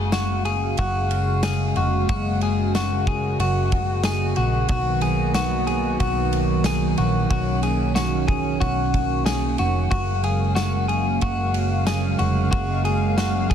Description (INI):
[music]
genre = dream pop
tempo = 92 BPM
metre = 4/4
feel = straight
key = F# major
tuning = A4 = 440 Hz
[part]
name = warm analog pad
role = sustained chords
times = 0.0-13.5 s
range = C#3 to E#5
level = -24 LUFS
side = right 2 dB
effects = chorus
[part]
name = clean electric guitar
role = arpeggios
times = 0.0-13.5 s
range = F#4 to G#4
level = -25 LUFS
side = left 3 dB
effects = lush chorus, ping-pong delay
[part]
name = hollow-body short-scale fingered electric bass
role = bass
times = 0.0-13.5 s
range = E#1 to B1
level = -24 LUFS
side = equal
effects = none
[part]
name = loose indie drum kit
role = drums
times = 0.1-13.5 s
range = kick drum, ride cymbal, snare drum, tambourine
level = -27 LUFS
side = equal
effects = none
[sound]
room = small room ambience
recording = dense, heavily limited modern master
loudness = -19 LUFS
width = side -8 dB against mid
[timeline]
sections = 0.0-13.5 A section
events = none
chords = 0.0 F#maj9; 4.7 Bmaj7; 9.9 F#maj9